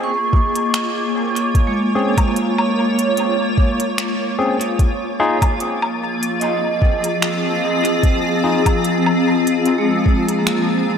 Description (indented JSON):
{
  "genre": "ambient dub",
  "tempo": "74 BPM",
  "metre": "4/4",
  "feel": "swing 55% on 16ths",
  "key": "Bb minor",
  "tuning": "A4 = 440 Hz",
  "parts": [
    { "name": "granular cloud pad", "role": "sustained chords", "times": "0.0-11.0 s", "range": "F3 to Db5", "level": "-19 LUFS", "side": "left 1 dB", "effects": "built-in reverb, analog chorus" },
    { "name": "vibraphone with medium hard mallets", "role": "arpeggios", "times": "0.0-11.0 s", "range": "Ab3 to Db6", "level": "-22 LUFS", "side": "right 3 dB", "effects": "dub echo" },
    { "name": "electronic kick drum", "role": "drums", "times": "0.3-10.2 s", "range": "none", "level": "-16 LUFS", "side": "equal", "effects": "overdrive, small room ambience" },
    { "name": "organic electronic drum kit", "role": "drums", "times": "0.6-10.6 s", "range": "finger snaps, hi-hat, woodblock", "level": "-26 LUFS", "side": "left 1 dB", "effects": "overdrive, small room ambience, dub echo" },
    { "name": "barky tine electric piano", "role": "stabs", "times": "2.0-8.6 s", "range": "C4 to Ab4", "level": "-24 LUFS", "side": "left 2 dB", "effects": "dub echo" }
  ],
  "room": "wet lush hall reverb, RT60 2.6 s",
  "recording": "dreamy mix soaked in reverb",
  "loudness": "-15 LUFS",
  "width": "side -7 dB against mid",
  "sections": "0.0-11.0 A section",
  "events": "none",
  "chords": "0.0 Bbm7; 4.8 Fm7"
}